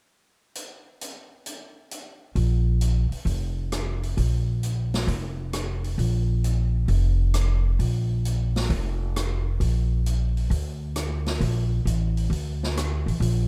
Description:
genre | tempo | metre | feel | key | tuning
modal jazz | 133 BPM | 4/4 | swing 68% on 8ths | Bb major | A4 = 441 Hz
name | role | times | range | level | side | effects
swinging big-band drum kit | drums | 0.6-13.4 s | hi-hat, rim click, snare drum | -36 LUFS | equal | none
upright bass | bass | 2.4-13.5 s | F1 to D2 | -25 LUFS | equal | none
room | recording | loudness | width
little or no reverb | close, detailed microphones | -25 LUFS | mono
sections
0.6-2.4 A section; 2.4-13.5 B section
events
none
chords
none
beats
| 0.55 1.00 1.46 1.91 | 2.36 2.81 3.27 3.72 | 4.17 4.62 5.08 5.53 | 5.98 6.43 6.89 7.34 | 7.79 8.24 8.70 9.15 | 9.60 10.05 10.51 10.96 | 11.41 11.86 12.31 12.77 | 13.22

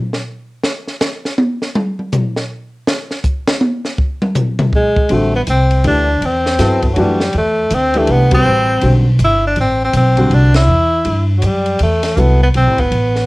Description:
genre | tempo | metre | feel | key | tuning
modal jazz | 161 BPM | 3/4 | swing 64% on 8ths | A dorian from 5.1 s | A4 = 440 Hz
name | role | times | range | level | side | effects
compact cocktail drum kit | drums | 0.1-13.2 s | hi-hat, kick drum, ride cymbal, snare drum, toms | -19 LUFS | equal | cassette tape
breathy tenor saxophone | melody | 4.8-13.3 s | F#3 to E4 | -15 LUFS | equal | none
warm baby grand piano | accompaniment | 5.1-12.4 s | D3 to B4 | -17 LUFS | left 1 dB | cassette tape
upright bass | bass | 5.1-13.3 s | G1 to G2 | -14 LUFS | equal | none
room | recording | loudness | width
moderate studio reverb, RT60 0.6 s | home recording on cassette | -12 LUFS | side -21 dB against mid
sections
0.0-5.1 A section; 5.1-13.3 B section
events
drum solo 0.0-5.1; band accent 8.3, 10.5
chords
0.0 N.C.; 5.1 Am9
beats
0.28 | 0.65 1.02 1.39 | 1.76 2.13 2.50 | 2.88 3.25 3.62 | 3.99 4.36 4.73 | 5.10 5.47 5.85 | 6.22 6.59 6.96 | 7.34 7.71 8.08 | 8.45 8.83 9.20 | 9.57 9.94 10.31 | 10.69 11.06 11.43 | 11.80 12.18 12.55 | 12.92

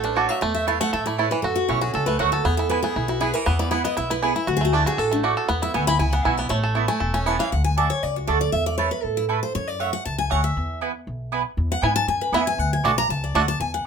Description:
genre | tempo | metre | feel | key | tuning
bluegrass | 237 BPM | 4/4 | straight | A major | A4 = 439 Hz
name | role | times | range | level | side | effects
bluegrass banjo | melody | 0.0-7.5, 11.8-13.4 s | E3 to A4 | -25 LUFS | right 2 dB | none
picked steel-string acoustic guitar | accompaniment | 0.0-13.9 s | D4 to B5 | -24 LUFS | left 1 dB | none
upright bass | bass | 0.0-13.8 s | E1 to A2 | -26 LUFS | left 1 dB | none
mandolin | stabs | 0.2-13.4 s | A3 to A5 | -24 LUFS | right 6 dB | none
room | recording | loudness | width
moderate small room ambience, RT60 0.5 s | minimal, uncompressed stereo recording | -20 LUFS | side -6 dB against mid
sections
0.0-7.5 A section; 7.5-13.9 A section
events
steel-string acoustic guitar solo 0.0-13.9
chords
0.4 Asus2/E; 1.4 F#m; 2.5 E; 4.5 D; 5.5 Eadd9; 6.5 Aadd9; 7.5 D; 8.5 Asus2/E; 9.6 F#m; 10.6 E; 12.6 D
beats
0.17 | 0.42 0.68 0.93 1.18 | 1.44 1.69 1.94 2.20 | 2.45 2.71 2.96 3.21 | 3.47 3.72 3.97 4.23 | 4.48 4.73 4.99 5.24 | 5.49 5.75 6.00 6.25 | 6.51 6.76 7.01 7.27 | 7.52 7.78 8.03 8.28 | 8.54 8.79 9.04 9.30 | 9.55 9.80 10.06 10.31 | 10.56 10.82 11.07 11.32 | 11.58 11.83 12.09 12.34 | 12.59 12.85 13.10 13.35 | 13.61

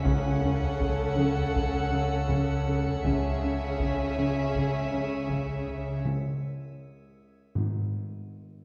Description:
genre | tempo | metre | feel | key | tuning
cinematic, suspense film score | 80 BPM | 4/4 | straight | C# minor | A4 = 440 Hz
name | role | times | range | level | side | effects
dark studio violin section | melody | 0.0-6.0 s | E5 to F#5 | -40 LUFS | equal | none
rich studio viola section | accompaniment | 0.0-6.0 s | C#4 | -40 LUFS | equal | none
drifting glass-harmonics texture | sustained chords | 0.0-6.1 s | G#4 to F#5 | -38 LUFS | equal | chorus, built-in reverb
warm studio cello section | riff | 0.0-5.9 s | C#3 to C#4 | -34 LUFS | equal | none
warm studio cello section | bass | 0.0-6.0 s | C#3 | -36 LUFS | equal | none
warm studio double bass section | bass | 0.0-6.0 s | C#2 | -35 LUFS | equal | none
timpani | percussion | 0.0-1.1, 6.0-8.6 s | G#2 to C#3 | -35 LUFS | equal | none
dark studio violin section | second line | 0.1-6.0 s | G#4 to A4 | -39 LUFS | equal | none
taiko ensemble | drums | 0.1-6.0 s | none | -36 LUFS | equal | none
room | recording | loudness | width
wet scoring stage reverb, RT60 1.7 s | dark, warm production | -28 LUFS | mono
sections
0.0-8.6 A section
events
break 6.0-8.6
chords
0.0 F#m/C#; 3.0 C#m; 6.0 N.C.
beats
| 0.05 0.80 1.55 2.30 | 3.05 3.80 4.55 5.30 | 6.05 6.80 7.55 8.30

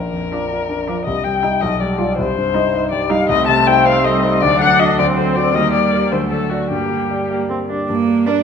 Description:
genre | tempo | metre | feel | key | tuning
quick classical-period movement for piano quartet | 106 BPM (dotted quarters) | 6/8 | rubato | G minor from 3.3 s | A4 = 440 Hz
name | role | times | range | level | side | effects
muted violin | melody | 0.0-8.4 s | D4 to A5 | -17 LUFS | left 7 dB | none
warm grand piano | accompaniment | 0.0-8.4 s | Bb1 to Eb5 | -19 LUFS | left 1 dB | none
muted cello | second line | 0.3-8.4 s | F3 to D4 | -22 LUFS | right 6 dB | none
muted viola | accompaniment | 0.3-8.4 s | A3 to Bb4 | -23 LUFS | right 4 dB | none
room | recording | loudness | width
wet recital hall reverb, RT60 1.6 s | minimal, uncompressed stereo recording | -14 LUFS | side -6 dB against mid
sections
0.0-7.9 A section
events
none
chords
0.0 Bb; 1.1 Cm; 1.6 G7/B; 2.2 Cm; 3.3 Adim/C; 4.4 D; 5.0 D7; 5.5 Eb; 6.1 D; 6.7 Gm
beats
0.50 | 1.06 1.61 | 2.17 2.73 | 3.29 3.85 | 4.41 4.98 | 5.54 6.12 | 6.71 7.30 | 7.89

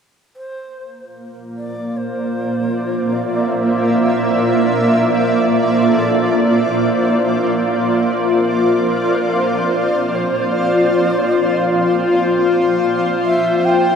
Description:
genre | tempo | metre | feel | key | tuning
ambient | free time | none | none | unclear | A4 = 441 Hz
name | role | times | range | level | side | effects
breathy bright long shakuhachi | melody | 0.4-14.0 s | A4 to G5 | -24 LUFS | equal | diffuse ambient delay
granular cloud pad | sustained chords | 1.5-14.0 s | Bb3 to F5 | -14 LUFS | equal | built-in reverb
room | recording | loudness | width
wet cathedral reverb, RT60 5.0 s | dark, warm production | -14 LUFS | side -7 dB against mid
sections
0.4-14.0 A section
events
fade-in on shakuhachi 0.4-14.0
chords
0.4 Bbadd9; 12.9 Fmaj7(no3)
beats
free time

